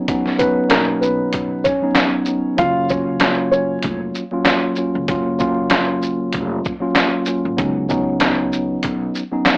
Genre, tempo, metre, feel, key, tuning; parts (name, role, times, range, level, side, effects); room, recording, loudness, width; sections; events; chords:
hip hop, boom-bap hip-hop; 96 BPM; 4/4; swing 56% on 16ths; F# major; A4 = 441 Hz
mellow tine electric piano; accompaniment; 0.0-9.6 s; B2 to E#4; -19 LUFS; equal; medium stereo tremolo
trip hop sampler-style drum kit; drums; 0.1-9.6 s; handclaps, hi-hat, kick drum, shaker, snare drum; -18 LUFS; equal
dark upright piano; melody; 0.4-4.0 s; A#3 to E#5; -19 LUFS; equal
upright bass; bass; 2.6-9.1 s; E#1 to C#2; -28 LUFS; equal
moderate small room reverb, RT60 0.5 s; vinyl crackle, AM radio sound; -16 LUFS; side -29 dB against mid
0.0-9.6 A section
break 0.0-2.6
0.0 C#9sus4; 2.6 F#maj7; 7.6 C#9sus4